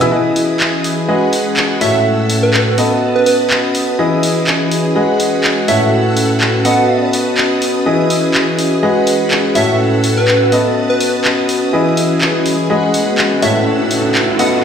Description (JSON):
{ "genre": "piano house", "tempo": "124 BPM", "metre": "4/4", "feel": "swing 56% on 16ths", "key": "E major", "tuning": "A4 = 441 Hz", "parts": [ { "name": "string machine, violins", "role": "sustained chords", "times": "0.0-14.6 s", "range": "E4 to E6", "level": "-21 LUFS", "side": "equal", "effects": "ensemble chorus" }, { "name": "clear concert grand piano", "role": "riff", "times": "0.0-14.6 s", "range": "A2 to E5", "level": "-16 LUFS", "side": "left 1 dB", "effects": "low-pass filter, ping-pong delay" }, { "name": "punchy analog drum machine", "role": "drums", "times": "0.0-14.5 s", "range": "handclaps, hi-hat, woodblock", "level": "-18 LUFS", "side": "equal", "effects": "none" }, { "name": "airy breathy pad", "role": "texture", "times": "0.0-14.6 s", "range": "A2 to D#6", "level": "-17 LUFS", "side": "right 1 dB", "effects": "chorus" }, { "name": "plucky unison lead", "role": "melody", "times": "1.8-14.6 s", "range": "B4 to F#5", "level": "-18 LUFS", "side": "right 2 dB", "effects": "ping-pong delay" }, { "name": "riser", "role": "sound effects", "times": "12.3-14.6 s", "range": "none", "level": "-22 LUFS", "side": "right 1 dB", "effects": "none" } ], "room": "wet plate reverb, RT60 2.1 s", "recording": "played on a big sound system in a bare room, large studio reverb", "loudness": "-11 LUFS", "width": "side -7 dB against mid", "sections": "0.1-14.6 A section", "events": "riser 12.3-14.6", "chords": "0.1 Emaj7; 1.1 G#m7; 1.8 F#m7/A; 2.8 B7; 4.0 Emaj7; 5.0 G#m7; 5.7 F#m7/A; 6.7 B7; 7.9 Emaj7; 8.8 G#m7; 9.6 F#m7/A; 10.5 B7; 11.7 Emaj7; 12.7 G#m7; 13.4 F#m7/A" }